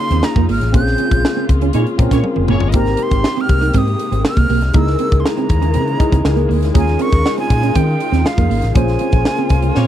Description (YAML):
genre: polished 1980s jazz-funk pop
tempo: 120 BPM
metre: 4/4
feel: straight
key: Ab major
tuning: A4 = 440 Hz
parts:
  - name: breathy bright jazz flute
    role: melody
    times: 0.0-9.9 s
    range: F5 to G6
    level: -22 LUFS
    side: right 3 dB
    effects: slapback echo
  - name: barky tine electric piano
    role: accompaniment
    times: 0.0-9.9 s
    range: Bb3 to C5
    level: -20 LUFS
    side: left 2 dB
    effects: analog chorus
  - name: warm studio string section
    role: sustained chords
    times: 0.0-9.9 s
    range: C3 to G4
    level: -25 LUFS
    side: left 3 dB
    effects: none
  - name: electric guitar at the edge of break-up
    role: riff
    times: 0.0-9.8 s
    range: Bb3 to Eb4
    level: -21 LUFS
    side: right 11 dB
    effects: analog chorus
  - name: vintage muted fingered electric bass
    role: bass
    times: 0.1-9.9 s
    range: F1 to Eb3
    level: -17 LUFS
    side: equal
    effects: none
  - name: tight funk drum kit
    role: drums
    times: 0.1-9.9 s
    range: hi-hat, kick drum, snare drum, toms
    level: -16 LUFS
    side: equal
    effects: none
  - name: warm horn section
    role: second line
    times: 1.7-2.7, 9.7-9.9 s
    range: Bb3 to Db5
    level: -25 LUFS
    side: left 4 dB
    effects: none
room: little or no reverb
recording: dry, close 1970s-style studio recording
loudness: -13 LUFS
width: side -11 dB against mid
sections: 0.0-9.9 A section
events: band accent 0.7-2.7, 8.8-9.9; drum fill 2.2-2.7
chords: 0.0 Eb9sus4; 0.7 Bbm7; 2.7 Abmaj9; 4.8 Dbm6; 6.8 Eb9sus4; 8.8 Bbm7